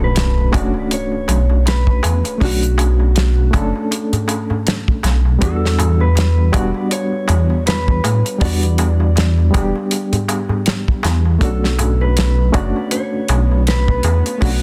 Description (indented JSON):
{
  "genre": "trip hop",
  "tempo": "80 BPM",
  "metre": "4/4",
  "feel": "swing 57% on 16ths",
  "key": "B minor",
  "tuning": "A4 = 440 Hz",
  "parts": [
    { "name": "mellow electric guitar", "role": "melody", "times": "0.0-14.6 s", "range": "F#4 to D5", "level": "-27 LUFS", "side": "equal", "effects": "vintage 12-bit sampler grit, tape echo" },
    { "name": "reed electric piano", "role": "accompaniment", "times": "0.0-14.6 s", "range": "G3 to A4", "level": "-24 LUFS", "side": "equal", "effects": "tremolo, tape echo" },
    { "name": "dark detuned saw bass", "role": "bass", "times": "0.0-14.6 s", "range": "E1 to A2", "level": "-17 LUFS", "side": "equal", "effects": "none" },
    { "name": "impact", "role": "sound effects", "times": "0.0-2.4 s", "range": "none", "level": "-29 LUFS", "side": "equal", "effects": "none" },
    { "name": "damped 70s drum kit", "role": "drums", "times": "0.2-14.6 s", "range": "hi-hat, kick drum, snare drum", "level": "-21 LUFS", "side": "equal", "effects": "studio reverb" },
    { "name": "darbuka", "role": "percussion", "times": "0.2-14.6 s", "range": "none", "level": "-28 LUFS", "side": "equal", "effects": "none" },
    { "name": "bowed-like drone", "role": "texture", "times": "13.1-14.6 s", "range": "B3", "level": "-35 LUFS", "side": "equal", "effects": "none" }
  ],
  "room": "small room ambience",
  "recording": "dense, heavily limited modern master",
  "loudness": "-16 LUFS",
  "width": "mono",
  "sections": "0.0-14.6 A section",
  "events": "impact 0.0-2.4",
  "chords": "0.0 Bm7; 5.4 Em7; 11.4 Bm7",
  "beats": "0.16 0.91 1.66 | 2.41 3.16 3.91 4.66 | 5.41 6.16 6.91 7.66 | 8.41 9.16 9.91 10.66 | 11.41 12.16 12.91 13.66 | 14.41"
}